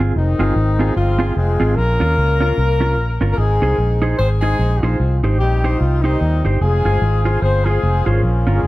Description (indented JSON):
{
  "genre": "ska",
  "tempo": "148 BPM",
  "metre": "4/4",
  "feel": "swing 59% on 8ths",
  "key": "F minor",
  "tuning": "A4 = 440 Hz",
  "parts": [
    { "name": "mellow electric guitar", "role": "accompaniment", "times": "0.0-8.6 s", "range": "C4 to C5", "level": "-21 LUFS", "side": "right 2 dB", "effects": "tremolo" },
    { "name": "vintage muted fingered electric bass", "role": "bass", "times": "0.0-8.7 s", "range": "F1 to Eb2", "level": "-16 LUFS", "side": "equal", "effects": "none" },
    { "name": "mellow horn section", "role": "melody", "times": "0.2-8.7 s", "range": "Eb3 to C5", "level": "-20 LUFS", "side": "left 2 dB", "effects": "dub echo" }
  ],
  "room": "light reverb",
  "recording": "dark, warm production",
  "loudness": "-14 LUFS",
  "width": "side -18 dB against mid",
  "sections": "0.2-8.7 A section",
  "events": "none",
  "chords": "0.2 Fm; 1.8 Bbm; 3.4 Ab; 5.0 Cm; 6.6 Fm"
}